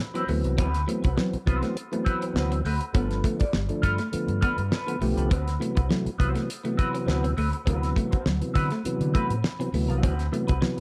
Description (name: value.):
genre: funk.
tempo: 102 BPM.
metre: 4/4.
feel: straight.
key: D mixolydian.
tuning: A4 = 441 Hz.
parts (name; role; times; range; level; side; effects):
semi-hollow electric guitar; accompaniment; 0.0-10.8 s; C4 to D5; -35 LUFS; equal; wah, spring reverb, plate reverb.
semi-hollow electric guitar; riff; 0.0-10.7 s; F#3 to C4; -36 LUFS; equal; spring reverb.
mellow tonewheel organ; stabs; 0.1-10.8 s; C3 to D5; -32 LUFS; equal; overdrive, chorus vibrato, slow rotary speaker, plate reverb.
damped 70s drum kit; drums; 0.2-10.8 s; hi-hat, kick drum, snare drum; -29 LUFS; equal; none.
overdriven fingered electric bass; bass; 0.3-10.6 s; G1 to D3; -30 LUFS; equal; none.
room: light reverb.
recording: dark, warm production.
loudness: -26 LUFS.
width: mono.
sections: 0.0-10.8 A section.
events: tonewheel organ fill 4.1-5.3.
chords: 0.0 D13; 3.0 G9; 5.3 D13.